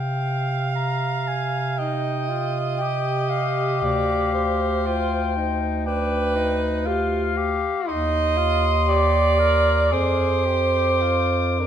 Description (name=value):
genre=classical, lyrical piece for single-reed quartet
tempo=51-61 BPM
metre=4/4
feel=rubato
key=C minor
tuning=A4 = 440 Hz
part: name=dark clarinet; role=melody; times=0.0-11.7 s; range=F5 to D6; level=-27 LUFS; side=left 7 dB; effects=none
part: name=clear alto saxophone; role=second line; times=0.0-11.7 s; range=G4 to F5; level=-24 LUFS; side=right 5 dB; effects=none
part: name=dark bass clarinet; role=bass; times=0.0-11.7 s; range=D2 to C3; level=-24 LUFS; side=equal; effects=none
part: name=mellow tenor saxophone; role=accompaniment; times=1.8-11.7 s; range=D4 to Bb4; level=-27 LUFS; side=left 4 dB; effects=none
room=wet recital hall reverb, RT60 1.8 s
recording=dark, warm production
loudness=-19 LUFS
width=side -9 dB against mid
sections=0.0-11.7 A section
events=none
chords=0.0 Cm; 3.8 G7/D; 7.9 Cm/Eb; 9.9 Fm69